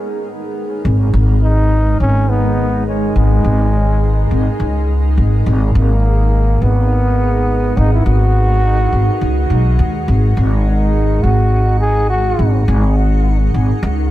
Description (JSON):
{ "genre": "ambient dub", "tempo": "104 BPM", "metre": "4/4", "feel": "swing 56% on 16ths", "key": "G# minor", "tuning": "A4 = 440 Hz", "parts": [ { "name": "granular cloud pad", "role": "sustained chords", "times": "0.0-14.1 s", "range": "G#3 to G#5", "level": "-22 LUFS", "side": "right 1 dB", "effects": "built-in reverb" }, { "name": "upright bass", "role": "bass", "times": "0.8-14.1 s", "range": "G#1 to D#2", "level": "-13 LUFS", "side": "equal", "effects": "none" }, { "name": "mellow trombone", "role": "melody", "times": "1.4-12.6 s", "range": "G#3 to G#4", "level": "-20 LUFS", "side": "equal", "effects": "dub echo" } ], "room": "small room ambience", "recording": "echo-heavy mix", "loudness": "-12 LUFS", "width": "side -15 dB against mid", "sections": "0.8-14.1 A section", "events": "none", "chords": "0.0 G#5; 0.8 G#7(no3)" }